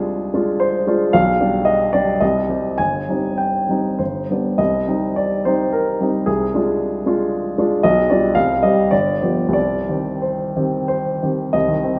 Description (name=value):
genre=classical, romantic character piece for solo piano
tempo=86-116 BPM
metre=3/4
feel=rubato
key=C minor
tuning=A4 = 440 Hz
part: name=warm baby grand piano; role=solo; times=0.0-12.0 s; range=G1 to Ab5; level=-18 LUFS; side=equal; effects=none
room=wet concert hall reverb, RT60 2.2 s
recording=recorded in a church or concert hall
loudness=-18 LUFS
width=mono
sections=0.0-11.5 A section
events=none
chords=0.0 Dm7b5/C; 1.1 G7/B; 2.2 Cm; 2.8 Cm/G; 4.0 G; 4.6 Cm; 6.3 Dm7b5/C; 7.8 G7/B; 8.4 Cm; 8.9 G7; 9.5 Cm